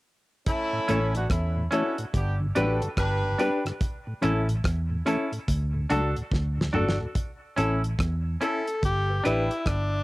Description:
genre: roots reggae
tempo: 72 BPM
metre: 4/4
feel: swing 62% on 16ths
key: A mixolydian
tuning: A4 = 439 Hz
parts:
  - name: warm horn section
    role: second line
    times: 0.5-3.6 s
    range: A3 to B4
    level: -31 LUFS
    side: equal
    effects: cassette tape, dub echo
  - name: damped 70s drum kit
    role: drums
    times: 0.5-9.9 s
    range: hi-hat, kick drum, rim click, snare drum, toms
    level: -29 LUFS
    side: equal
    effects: cassette tape
  - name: mellow tonewheel organ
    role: accompaniment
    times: 0.7-7.1 s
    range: D2 to D4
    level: -31 LUFS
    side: equal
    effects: slow rotary speaker, cassette tape
  - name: semi-hollow electric guitar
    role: accompaniment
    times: 0.9-9.5 s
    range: C#4 to B4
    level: -32 LUFS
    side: right 2 dB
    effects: cassette tape, dub echo
  - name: warm upright piano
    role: stabs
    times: 0.9-9.4 s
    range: C#4 to C#5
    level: -28 LUFS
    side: left 3 dB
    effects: cassette tape
  - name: vintage muted fingered electric bass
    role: bass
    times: 0.9-10.0 s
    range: G1 to E2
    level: -27 LUFS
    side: equal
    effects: none
  - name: warm tenor saxophone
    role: melody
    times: 8.4-10.0 s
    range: D4 to A4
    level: -28 LUFS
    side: left 1 dB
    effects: cassette tape, dub echo
room: light reverb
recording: home recording on cassette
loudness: -24 LUFS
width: side -19 dB against mid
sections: 0.5-7.2 A section; 7.2-10.0 B section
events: drum fill 6.3-7.2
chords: 0.5 A; 2.1 G; 3.8 A; 5.5 D; 7.2 A; 8.8 G

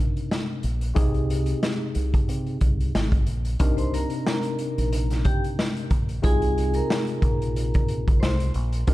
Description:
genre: hip hop, boom-bap hip-hop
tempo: 91 BPM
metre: 4/4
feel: swing 56% on 16ths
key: C minor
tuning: A4 = 440 Hz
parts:
  - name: tine electric piano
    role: accompaniment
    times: 0.0-8.9 s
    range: C3 to Bb4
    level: -29 LUFS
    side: left 1 dB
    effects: fast stereo tremolo, high-pass filter, low-pass filter
  - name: deep dub fingered electric bass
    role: bass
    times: 0.0-8.8 s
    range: Ab1 to C3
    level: -26 LUFS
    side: equal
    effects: none
  - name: raw garage drum kit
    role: drums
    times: 0.2-8.9 s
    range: hi-hat, kick drum, snare drum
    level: -24 LUFS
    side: equal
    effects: none
  - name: vibraphone with medium hard mallets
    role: melody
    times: 3.8-8.5 s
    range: G4 to C6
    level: -31 LUFS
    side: equal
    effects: high-pass filter, low-pass filter, analog delay
room: studio reverb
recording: dark, warm production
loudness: -21 LUFS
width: side -17 dB against mid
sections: 0.0-3.6 A section; 3.6-8.9 B section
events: none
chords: 0.0 Cm9; 1.0 Abmaj7; 3.6 Cm9; 6.2 Fm7

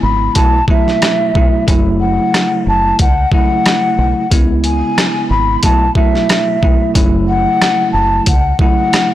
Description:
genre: hip hop, boom-bap hip-hop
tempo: 91 BPM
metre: 4/4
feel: swing 55% on 16ths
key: F# minor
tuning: A4 = 440 Hz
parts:
  - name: breathy mellow jazz flute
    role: melody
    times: 0.0-9.1 s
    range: E5 to B5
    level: -16 LUFS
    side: left 1 dB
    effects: high-pass filter, low-pass filter, digital delay
  - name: bell-like tine electric piano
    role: accompaniment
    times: 0.0-9.1 s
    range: B2 to E4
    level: -17 LUFS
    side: equal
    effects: fast stereo tremolo, cassette tape, high-pass filter, low-pass filter
  - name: deep dub fingered electric bass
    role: bass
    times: 0.0-8.5 s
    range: F#1 to C#2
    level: -17 LUFS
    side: equal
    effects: transformer saturation
  - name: boom bap sampler-style drum kit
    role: drums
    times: 0.4-9.1 s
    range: hi-hat, kick drum, rim click, snare drum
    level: -14 LUFS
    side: equal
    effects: none
room: light reverb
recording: blown-out, overdriven recording, overdrive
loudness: -10 LUFS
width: side -13 dB against mid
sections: 0.0-9.1 A section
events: none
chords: 0.4 B7sus4; 1.7 F#m7; 4.3 C#m7; 5.6 B7sus4; 7.0 F#m7

